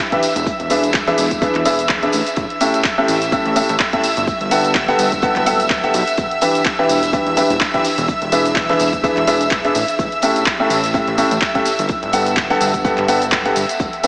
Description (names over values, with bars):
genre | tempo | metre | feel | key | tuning
piano house | 126 BPM | 4/4 | swing 56% on 16ths | E dorian | A4 = 443 Hz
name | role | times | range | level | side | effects
analog string pad | sustained chords | 0.0-14.1 s | E5 to E6 | -21 LUFS | right 1 dB | ensemble chorus, sidechain pumping
clear upright piano | riff | 0.1-14.1 s | G2 to F#5 | -17 LUFS | equal | sidechain pumping, analog delay
electronic kick drum | drums | 0.1-13.9 s | none | -24 LUFS | equal | none
house drum kit | drums | 0.1-14.1 s | cabasa, handclaps, hi-hat | -22 LUFS | equal | none
damped 70s drum kit | drums | 0.2-14.1 s | hi-hat, snare drum | -33 LUFS | equal | none
tambourine | percussion | 0.2-14.1 s | none | -29 LUFS | equal | none
fat analog bass | bass | 0.4-13.9 s | D1 to B1 | -24 LUFS | equal | sidechain pumping
room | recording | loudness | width
wet huge ambient reverb, RT60 4.1 s | dreamy mix soaked in reverb, small speaker sound | -14 LUFS | side -24 dB against mid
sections
0.0-14.1 A section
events
none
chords
0.2 E7; 2.1 A7; 4.3 Gmaj9; 6.2 Em7; 7.8 E7; 9.8 A7; 11.9 Gmaj9